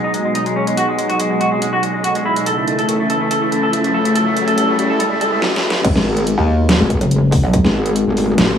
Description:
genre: heavy wobble dubstep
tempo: 142 BPM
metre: 4/4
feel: half-time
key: G# phrygian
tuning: A4 = 440 Hz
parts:
  - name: clean electric guitar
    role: melody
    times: 0.0-5.4 s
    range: G#3 to A4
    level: -18 LUFS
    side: equal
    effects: digital delay
  - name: lush unison pad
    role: sustained chords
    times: 0.0-8.6 s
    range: B2 to F#4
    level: -20 LUFS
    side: equal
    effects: chorus, vintage 12-bit sampler grit, sidechain pumping
  - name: riser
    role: sound effects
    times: 0.8-5.4 s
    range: none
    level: -26 LUFS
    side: right 1 dB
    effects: none
  - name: dubstep drum kit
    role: drums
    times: 0.1-8.5 s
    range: crash cymbal, hi-hat, snare drum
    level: -20 LUFS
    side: equal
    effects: overdrive
  - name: metallic wobble bass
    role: bass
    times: 5.8-7.6 s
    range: F#1 to D#2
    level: -14 LUFS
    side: equal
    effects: chorus, overdrive
  - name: electronic kick drum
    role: drums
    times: 5.8-7.6 s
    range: none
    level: -19 LUFS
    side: equal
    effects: none
  - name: metallic wobble bass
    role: bass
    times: 6.0-8.6 s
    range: G#1 to A1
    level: -16 LUFS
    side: left 1 dB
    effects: distortion, chorus, overdrive
room: moderate lush hall reverb, RT60 1.8 s, digital ambience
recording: high-pass filter, small room ambience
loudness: -14 LUFS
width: side -8 dB against mid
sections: 0.0-5.8 A section; 5.8-8.6 B section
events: build-up 0.0-5.8; riser 0.8-5.4; drum fill 5.4-5.8; drop 5.8-8.6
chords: 0.0 G#m7; 2.5 A; 5.8 G#m7

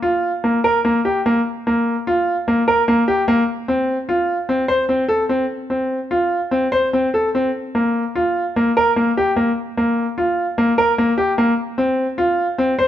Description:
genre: contemporary instrumental, contemporary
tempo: 148 BPM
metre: 5/4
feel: straight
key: G minor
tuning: A4 = 440 Hz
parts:
  - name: bright grand piano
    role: solo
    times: 0.0-12.9 s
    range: Bb3 to C5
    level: -16 LUFS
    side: equal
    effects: none
room: light reverb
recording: close, detailed microphones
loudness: -16 LUFS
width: side -11 dB against mid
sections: 0.0-12.9 A section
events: none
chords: none

